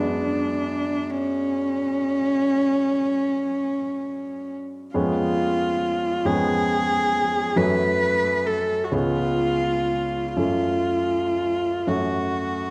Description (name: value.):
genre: classical, romantic duo for cello and grand piano.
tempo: 40-48 BPM (dotted quarters).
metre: 12/8.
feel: rubato.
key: F# minor.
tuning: A4 = 440 Hz.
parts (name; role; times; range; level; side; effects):
warm cello; melody; 0.0-12.7 s; C#4 to B4; -25 LUFS; equal; none.
clear grand piano; accompaniment; 0.0-12.7 s; C#2 to D4; -28 LUFS; equal; none.
room: moderate recital hall reverb, RT60 1.4 s.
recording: dark, warm production.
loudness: -23 LUFS.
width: mono.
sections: 0.0-12.7 A section.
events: none.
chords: 0.0 G#m7b5/F#; 4.9 C#7/E#; 7.6 F#m; 8.9 C#7; 10.4 F#m.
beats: 1.11 2.39 3.66 | 4.95 6.26 7.57 8.93 | 10.37 11.87.